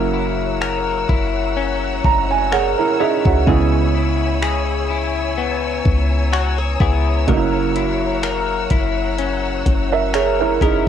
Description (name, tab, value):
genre	contemporary R&B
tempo	63 BPM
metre	4/4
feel	swing 54% on 16ths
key	unclear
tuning	A4 = 440 Hz
part	warm baby grand piano	accompaniment	0.0-10.9 s	C#3 to A#5	-20 LUFS	right 9 dB	cassette tape
part	bright studio string section	sustained chords	0.0-10.9 s	C#5 to E6	-26 LUFS	equal	cassette tape
part	direct-recorded clean electric guitar	arpeggios	0.0-10.9 s	C#3 to A#4	-22 LUFS	left 12 dB	analog chorus, cassette tape, tape echo
part	clean 808-style bass	bass	0.0-10.9 s	F#1 to C#2	-21 LUFS	equal	none
part	smooth R&B drum kit	drums	0.6-10.9 s	finger snaps, hi-hat, kick drum	-20 LUFS	equal	cassette tape
room	light reverb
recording	home recording on cassette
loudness	-16 LUFS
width	side -9 dB against mid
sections	0.0-10.9 A section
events	grand piano fill 1.6-3.5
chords	0.0 F#7; 3.5 C#m7; 7.3 F#7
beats	0.61 1.57 2.52 | 3.47 4.42 5.38 6.33 | 7.28 8.23 9.19 10.14